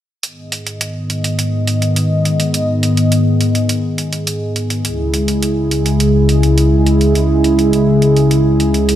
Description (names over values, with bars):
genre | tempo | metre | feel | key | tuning
synthwave | 104 BPM | 4/4 | straight | G# minor | A4 = 440 Hz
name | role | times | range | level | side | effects
warm analog pad | sustained chords | 0.2-9.0 s | C#2 to D#5 | -12 LUFS | equal | chorus
electronic hi-hat | drums | 0.2-9.0 s | none | -22 LUFS | right 2 dB | none
room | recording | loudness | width
light reverb | none | -12 LUFS | side -11 dB against mid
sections
0.2-9.0 A section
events
filter sweep on analog synth pad 0.2-9.0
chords
0.2 G#m; 4.8 C#m